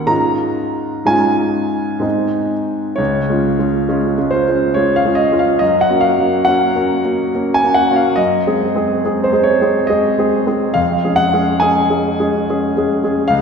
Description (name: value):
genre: classical, romantic character piece for solo piano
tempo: 60-74 BPM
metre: 3/4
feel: rubato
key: Db major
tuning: A4 = 440 Hz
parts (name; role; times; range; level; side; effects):
- warm concert grand piano; solo; 0.0-13.4 s; Db2 to Bb5; -13 LUFS; equal; none
room: wet scoring stage reverb, RT60 1.9 s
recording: recorded in a church or concert hall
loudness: -13 LUFS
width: side -6 dB against mid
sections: 0.0-3.0 A section; 3.0-13.4 B section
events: none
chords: 0.1 Db/Ab; 2.0 Ab; 3.0 Db; 5.6 Gb; 8.2 Ab7/Gb; 10.8 Db/F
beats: | 0.10 1.09 2.04 | 2.99 3.89 4.76 | 5.61 6.45 7.32 | 8.19 9.05 9.90 | 10.76 11.61 12.47 | 13.29